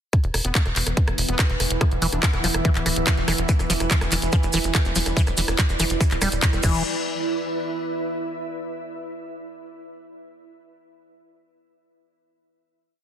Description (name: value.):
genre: psychedelic trance.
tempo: 143 BPM.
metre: 4/4.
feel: straight.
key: unclear.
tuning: A4 = 440 Hz.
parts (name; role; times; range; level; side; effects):
overtone-sweeping drone; sustained chords; 0.5-6.6 s; E3 to B3; -32 LUFS; equal; chorus, built-in reverb, sidechain pumping.
electronic kick drum; drums; 0.1-6.7 s; none; -20 LUFS; equal; none.
garage drum kit; drums; 0.1-6.7 s; crash cymbal, handclaps, hi-hat, rim click; -25 LUFS; equal; none.
ethereal airy pad; texture; 1.1-8.5 s; E4 to E5; -30 LUFS; right 3 dB; ensemble chorus, built-in reverb, sidechain pumping.
tight sequencer bass; bass; 0.2-6.8 s; D1 to F1; -26 LUFS; equal; none.
metallic wobble bass; second line; 0.4-2.3 s; B3 to D4; -38 LUFS; left 2 dB; none.
liquid acid bass; riff; 1.8-6.8 s; E3 to G3; -28 LUFS; equal; chorus, auto-pan, sidechain pumping, tape echo.
maracas; percussion; 3.5-6.8 s; none; -31 LUFS; right 3 dB; none.
room: light reverb.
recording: dense, heavily limited modern master.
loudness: -19 LUFS.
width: side -9 dB against mid.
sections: 0.1-6.8 groove; 6.8-8.5 final note.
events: none.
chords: 0.1 E5.